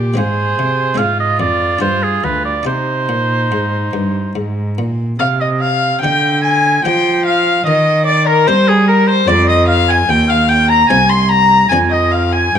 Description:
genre	classical, baroque-style sonata movement with continuo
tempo	73 BPM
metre	3/4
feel	straight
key	C minor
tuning	A4 = 440 Hz
part	dark violin	melody	0.0-12.6 s	Eb4 to C6	-15 LUFS	left 6 dB	none
part	buff-stop harpsichord	accompaniment	0.0-12.6 s	C2 to D5	-23 LUFS	left 2 dB	none
part	dark cello	bass	0.0-12.6 s	C2 to G3	-16 LUFS	right 1 dB	none
part	clear oboe	second line	0.2-12.6 s	Ab4 to C6	-17 LUFS	right 6 dB	none
room	moderate recital hall reverb, RT60 1.3 s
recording	close, detailed microphones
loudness	-11 LUFS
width	side -8 dB against mid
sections	0.0-5.2 A section; 5.2-12.6 B section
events	none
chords	0.2 Fm/Ab; 1.0 Dm7b5/Ab; 1.8 G5; 2.7 Cm; 7.7 Cm/Eb; 9.3 Fm; 10.1 Cm/Eb; 11.7 Fm6

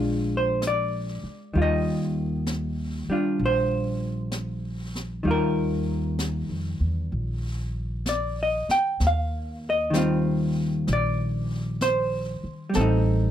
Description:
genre	jazz ballad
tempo	64 BPM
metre	4/4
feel	swing 66% on 8ths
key	Eb major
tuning	A4 = 440 Hz
part	vintage hollow-body jazz guitar	accompaniment	0.0-13.3 s	Eb3 to G5	-25 LUFS	equal	none
part	upright bass	bass	0.0-13.3 s	A1 to F2	-28 LUFS	equal	none
part	jazz brush drum kit	drums	0.6-13.3 s	brushed snare drum, hi-hat, snare drum	-36 LUFS	equal	none
room	light reverb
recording	dry, close 1970s-style studio recording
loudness	-23 LUFS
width	side -10 dB against mid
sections	0.0-9.0 A section; 9.0-13.3 B section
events	none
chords	0.0 Bb7; 1.5 Ebmaj9; 9.0 Eb69; 12.7 Am7b5

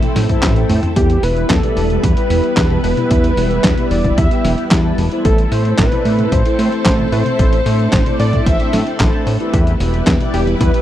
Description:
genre	italo disco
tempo	112 BPM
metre	4/4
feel	straight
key	A minor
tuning	A4 = 439 Hz
part	wide unison lead	melody	0.0-10.8 s	G4 to E5	-21 LUFS	equal	tape echo
part	string machine, full ensemble	sustained chords	0.0-10.8 s	G3 to B4	-21 LUFS	equal	ensemble chorus
part	mellow synth brass	stabs	0.0-10.8 s	E4 to A5	-24 LUFS	left 3 dB	chorus
part	dusty soul sampler-style drum kit	drums	0.0-10.8 s	handclaps, hi-hat, snare drum, toms	-20 LUFS	equal	overdrive
part	fat analog bass	bass	0.2-10.7 s	E1 to A2	-17 LUFS	equal	none
part	electronic kick drum	drums	0.3-10.7 s	none	-17 LUFS	equal	none
room	little or no reverb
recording	dry, close 1970s-style studio recording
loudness	-12 LUFS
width	side -12 dB against mid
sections	0.0-10.8 A section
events	drum fill 0.0-1.0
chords	0.0 Am; 1.0 Em; 5.2 Am; 9.5 Em

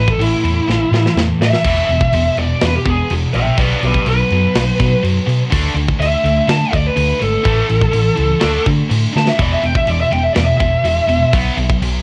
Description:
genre	hard rock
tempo	124 BPM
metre	4/4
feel	straight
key	unclear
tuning	A4 = 441 Hz
part	bluesy overdriven lead guitar	melody	0.0-11.3 s	E4 to A5	-20 LUFS	equal	distortion, cassette tape, tape echo
part	heavy high-gain guitar	riff	0.0-12.0 s	E2 to D4	-22 LUFS	equal	distortion
part	hollow-body short-scale fingered electric bass	bass	0.0-12.0 s	E1 to D3	-20 LUFS	equal	none
part	tight metal drum kit	drums	0.1-11.9 s	crash cymbal, kick drum, snare drum	-22 LUFS	equal	cassette tape
room	little or no reverb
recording	home recording on cassette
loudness	-15 LUFS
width	mono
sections	0.0-12.0 A section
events	lead electric guitar solo 0.0-12.0; drum fill 0.7-1.6, 9.1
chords	0.0 A5; 1.6 E5; 3.6 B5; 5.5 Dsus2; 7.5 A; 8.4 D5; 9.4 E5; 11.3 B5

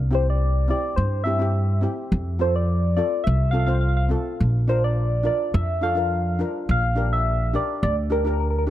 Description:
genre	calypso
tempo	105 BPM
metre	4/4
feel	straight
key	F major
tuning	A4 = 440 Hz
part	upright bass	bass	0.0-8.7 s	Bb1 to G2	-21 LUFS	equal	none
part	soft struck synth lead	melody	0.1-8.6 s	Bb4 to F5	-25 LUFS	equal	chorus, phaser
part	steel pan	accompaniment	0.1-8.7 s	C4 to C5	-29 LUFS	left 2 dB	none
room	small room ambience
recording	dark, warm production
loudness	-20 LUFS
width	side -13 dB against mid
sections	0.0-8.7 A section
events	none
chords	0.0 C; 2.1 F; 4.4 Bb; 6.7 Gm/Bb

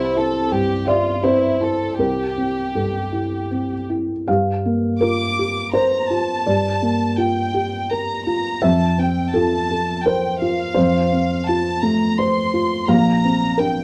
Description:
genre	neoclassical piano and strings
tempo	84 BPM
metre	3/4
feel	rubato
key	G dorian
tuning	A4 = 440 Hz
part	warm chamber violin section	melody	0.0-13.8 s	E4 to D6	-26 LUFS	equal	none
part	felt-muted upright piano	accompaniment	0.0-13.8 s	Bb1 to F5	-20 LUFS	equal	none
room	light reverb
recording	dark, warm production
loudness	-19 LUFS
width	mono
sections	0.0-4.3 A section; 4.3-13.8 B section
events	none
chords	0.0 C6; 4.3 Gm7; 8.6 F; 12.9 Bbadd9

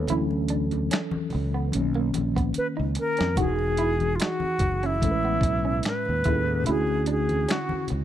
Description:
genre	R&B, neo-soul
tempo	73 BPM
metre	4/4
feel	swing 54% on 16ths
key	E major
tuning	A4 = 440 Hz
part	mellow tine electric piano	accompaniment	0.0-8.0 s	A2 to C#5	-29 LUFS	left 1 dB	medium stereo tremolo
part	fretless electric bass	bass	0.0-8.0 s	E1 to F2	-27 LUFS	equal	none
part	electric guitar through a small old amp	second line	0.1-7.9 s	A#3 to F#4	-33 LUFS	right 5 dB	none
part	dusty soul sampler-style drum kit	drums	0.1-8.0 s	finger snaps, hi-hat, kick drum, snare drum	-27 LUFS	equal	none
part	congas	percussion	0.1-8.0 s	none	-36 LUFS	left 3 dB	none
part	reedy silver concert flute	melody	2.6-7.9 s	E4 to B4	-27 LUFS	equal	none
room	little or no reverb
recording	dry, close 1970s-style studio recording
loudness	-22 LUFS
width	side -11 dB against mid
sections	0.0-3.4 A section; 3.4-8.0 B section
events	tine electric piano solo 0.0-3.4; drum fill 2.6-3.4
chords	0.1 Dmaj9; 1.7 Bmaj9; 3.4 Emaj9; 5.0 Amaj9; 6.7 Dmaj9

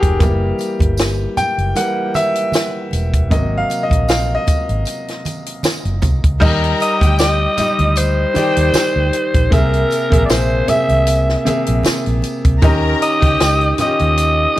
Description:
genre	lush 1970s-style soul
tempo	77 BPM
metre	4/4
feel	swing 54% on 16ths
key	Eb major from 6.4 s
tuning	A4 = 440 Hz
part	bright grand piano	accompaniment	0.0-14.6 s	C3 to G5	-19 LUFS	equal	none
part	vintage muted fingered electric bass	bass	0.0-14.5 s	Fb1 to Eb2	-18 LUFS	equal	none
part	compact cocktail drum kit	drums	0.0-14.6 s	crash cymbal, hi-hat, kick drum, snare drum	-17 LUFS	equal	none
part	congas	percussion	0.2-14.2 s	none	-27 LUFS	right 3 dB	none
part	tambourine	percussion	0.2-14.4 s	none	-32 LUFS	right 4 dB	none
part	warm studio string section	second line	6.4-14.6 s	G4 to Bb5	-23 LUFS	left 4 dB	none
part	growling alto saxophone	melody	6.8-14.6 s	Bb4 to E5	-17 LUFS	equal	analog delay
room	light reverb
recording	none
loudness	-13 LUFS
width	side -15 dB against mid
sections	0.0-6.4 A section; 6.4-14.6 B section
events	grand piano solo 0.0-6.4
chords	0.2 Gb7b9; 3.3 Ab7; 6.4 Ebmaj7; 9.5 C7b13; 12.6 Eb7

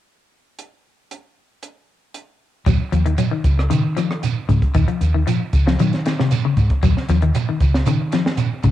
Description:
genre	afrobeat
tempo	116 BPM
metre	4/4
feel	straight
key	Eb dorian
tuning	A4 = 441 Hz
part	compact cocktail drum kit	drums	0.6-8.7 s	hi-hat, kick drum, rim click, snare drum	-22 LUFS	right 1 dB	cassette tape
part	semi-hollow electric guitar	arpeggios	2.7-8.7 s	C3 to Gb3	-22 LUFS	left 7 dB	lush chorus, analog delay
part	vintage muted fingered electric bass	bass	2.7-8.7 s	Db2 to Eb3	-19 LUFS	equal	none
part	shekere	percussion	2.7-8.7 s	none	-23 LUFS	right 6 dB	none
room	light reverb, small room ambience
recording	home recording on cassette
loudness	-16 LUFS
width	side -13 dB against mid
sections	0.6-2.7 A section; 2.7-8.7 B section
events	none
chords	0.6 N.C.; 2.7 Eb7sus2

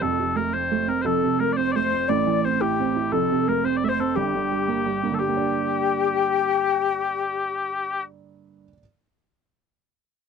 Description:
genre	celtic folk, Celtic jig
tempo	116 BPM (dotted quarters)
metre	6/8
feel	straight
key	G minor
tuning	A4 = 440 Hz
part	mellow small bagpipes	melody	0.0-8.0 s	G4 to E5	-26 LUFS	left 4 dB	none
part	warm upright piano	accompaniment	0.0-8.8 s	F1 to E4	-25 LUFS	right 9 dB	none
part	breathy mellow wooden flute	second line	1.0-8.0 s	G4 to D5	-25 LUFS	left 11 dB	none
room	light reverb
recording	dry, close 1970s-style studio recording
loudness	-21 LUFS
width	side -6 dB against mid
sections	0.0-5.2 A section; 5.2-7.3 B section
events	none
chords	0.0 F; 2.1 Am; 3.1 F; 4.2 Gm

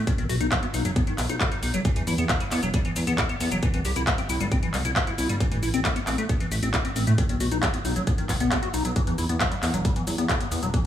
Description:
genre	uplifting trance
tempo	135 BPM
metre	4/4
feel	straight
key	E harmonic minor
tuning	A4 = 440 Hz
part	liquid acid bass	arpeggios	0.0-10.8 s	D#3 to G4	-28 LUFS	left 2 dB	phaser, sidechain pumping, tape echo
part	plucky analog bass	bass	0.0-10.7 s	E1 to A2	-26 LUFS	equal	sidechain pumping
part	electronic kick drum	drums	0.1-10.8 s	none	-26 LUFS	equal	none
part	techno drum kit	drums	0.1-10.8 s	handclaps, hi-hat, shaker	-29 LUFS	equal	none
room	light reverb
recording	small room ambience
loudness	-22 LUFS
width	side -10 dB against mid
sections	0.0-10.9 A section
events	none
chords	0.1 B; 1.8 Esus2; 3.6 C; 5.4 Am; 7.2 B; 9.0 Esus2

